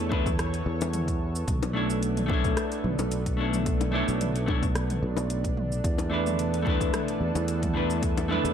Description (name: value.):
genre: sunset chillout.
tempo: 110 BPM.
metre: 4/4.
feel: swing 54% on 16ths.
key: B minor.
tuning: A4 = 440 Hz.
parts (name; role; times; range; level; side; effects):
vintage hollow-body jazz guitar; accompaniment; 0.0-8.5 s; A3 to C#5; -29 LUFS; moving between left 4 dB and right 3 dB; auto-pan, digital delay.
lush unison pad; sustained chords; 0.0-8.5 s; E3 to C#5; -33 LUFS; right 1 dB; chorus.
sustaining fretless electric bass; bass; 0.0-8.5 s; B1 to E2; -29 LUFS; equal; none.
electronic kick drum; drums; 0.1-8.1 s; none; -29 LUFS; equal; overdrive.
bongos; percussion; 0.1-8.3 s; none; -34 LUFS; left 8 dB; none.
deep house drum kit; drums; 0.3-8.5 s; cabasa, hi-hat, rim click, toms; -35 LUFS; right 1 dB; overdrive.
room: light reverb.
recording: dark, warm production.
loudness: -24 LUFS.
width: side -8 dB against mid.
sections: 0.0-8.5 A section.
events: none.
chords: 0.0 E7sus4; 1.5 Bm11; 5.8 E7sus4.